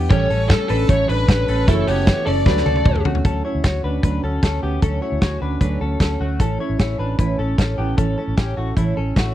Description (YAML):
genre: jangly indie pop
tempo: 152 BPM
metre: 4/4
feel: straight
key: D major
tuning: A4 = 440 Hz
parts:
  - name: picked steel-string acoustic guitar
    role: accompaniment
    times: 0.0-9.3 s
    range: F#2 to A4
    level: -25 LUFS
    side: right 4 dB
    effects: none
  - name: warm upright piano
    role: accompaniment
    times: 0.0-3.3 s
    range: C#4 to D5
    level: -30 LUFS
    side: right 10 dB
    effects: none
  - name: direct-recorded clean electric guitar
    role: arpeggios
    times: 0.0-9.3 s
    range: C#3 to C#5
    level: -26 LUFS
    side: left 4 dB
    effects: lush chorus, slapback echo
  - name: vintage muted fingered electric bass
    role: bass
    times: 0.0-9.3 s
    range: F#1 to D2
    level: -22 LUFS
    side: equal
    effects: none
  - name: lead guitar through a small cranked amp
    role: melody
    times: 0.1-3.0 s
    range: A4 to D5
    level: -22 LUFS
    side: left 2 dB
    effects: overdrive, slapback echo
  - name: big rock drum kit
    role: drums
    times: 0.1-9.3 s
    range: hi-hat, kick drum, snare drum, toms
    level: -17 LUFS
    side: equal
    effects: none
room: studio reverb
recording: dry, close 1970s-style studio recording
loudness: -16 LUFS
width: side -12 dB against mid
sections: 0.0-3.2 A section; 3.2-9.3 B section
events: drum fill 2.5-3.2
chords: 0.1 A7; 1.7 F#m7; 2.5 Dmaj7; 6.4 A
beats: | 0.10 0.49 0.89 1.28 | 1.67 2.07 2.46 2.85 | 3.25 3.64 4.04 4.43 | 4.82 5.22 5.61 6.00 | 6.40 6.79 7.19 7.58 | 7.98 8.37 8.77 9.16